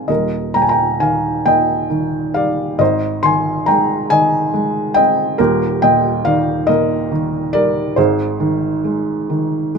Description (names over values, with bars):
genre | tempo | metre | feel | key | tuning
classical, lyrical solo piano | 46 BPM (dotted quarters) | 6/8 | rubato | unclear | A4 = 442 Hz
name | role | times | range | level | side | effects
felt-muted upright piano | solo | 0.0-9.8 s | Eb1 to C6 | -14 LUFS | equal | none
room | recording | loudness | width
light reverb | minimal, uncompressed stereo recording | -14 LUFS | side -5 dB against mid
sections
0.0-9.8 A section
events
none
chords
0.1 Eb; 2.8 Ab; 5.4 Eb; 8.0 Ab